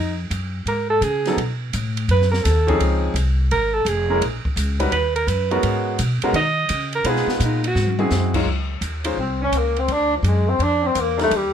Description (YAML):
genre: jazz, small-group swing and bop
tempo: 169 BPM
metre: 4/4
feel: swing 66% on 8ths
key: unclear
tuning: A4 = 440 Hz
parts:
  - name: breathy alto saxophone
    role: second line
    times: 0.0-11.5 s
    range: F3 to Eb5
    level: -22 LUFS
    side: right 3 dB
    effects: none
  - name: upright bass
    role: bass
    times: 0.0-11.5 s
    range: F1 to Eb3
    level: -22 LUFS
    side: equal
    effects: none
  - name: open jazz drum kit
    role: drums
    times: 0.3-11.4 s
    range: crash cymbal, hi-hat, kick drum, ride cymbal, snare drum, toms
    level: -28 LUFS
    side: right 1 dB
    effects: none
  - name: clear grand piano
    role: accompaniment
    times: 1.3-11.3 s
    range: F3 to Db5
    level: -22 LUFS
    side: equal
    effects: none
  - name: mellow tenor saxophone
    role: melody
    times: 9.2-11.5 s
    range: F3 to D4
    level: -20 LUFS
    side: left 2 dB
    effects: plate reverb
room: light reverb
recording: none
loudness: -18 LUFS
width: side -8 dB against mid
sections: 0.0-8.5 A section; 8.5-11.5 B section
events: alto saxophone solo 0.0-8.5; drum fill 7.8-8.1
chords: 0.0 Fm(b13); 1.4 B7; 2.8 Dbmaj9; 4.2 Bbmadd11; 4.9 Ebm7; 5.6 Abm11; 7.1 Fm7b5; 7.8 Ab7b13; 8.5 Dbmaj7sus2; 9.9 Bb